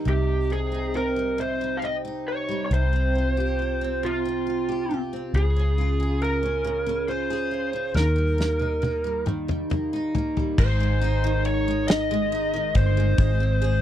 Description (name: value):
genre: six-eight pop ballad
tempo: 46 BPM (dotted quarters)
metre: 6/8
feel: straight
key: Ab major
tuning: A4 = 439 Hz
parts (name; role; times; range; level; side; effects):
- picked steel-string acoustic guitar; accompaniment; 0.0-13.8 s; Ab2 to Ab4; -28 LUFS; equal; double-tracked left and right
- lead guitar through a small cranked amp; melody; 0.1-13.8 s; F4 to F5; -26 LUFS; right 1 dB; overdrive
- vintage muted fingered electric bass; bass; 0.1-13.8 s; G1 to Eb2; -24 LUFS; equal; none
- loose indie drum kit; drums; 8.0-13.8 s; crash cymbal, kick drum, ride cymbal, snare drum, toms; -24 LUFS; left 1 dB; none
room: little or no reverb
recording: dry, close 1970s-style studio recording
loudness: -22 LUFS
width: side -11 dB against mid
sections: 0.0-10.6 A section; 10.6-13.8 B section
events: drum fill 7.9-10.6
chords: 0.1 Cm; 2.7 Fsus2/C; 5.3 Db; 7.9 Eb; 10.6 Ab; 13.2 Fm/Ab (rootless)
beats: | 0.05 1.38 | 2.71 4.03 | 5.34 6.64 | 7.95 9.27 | 10.58 11.88 | 13.19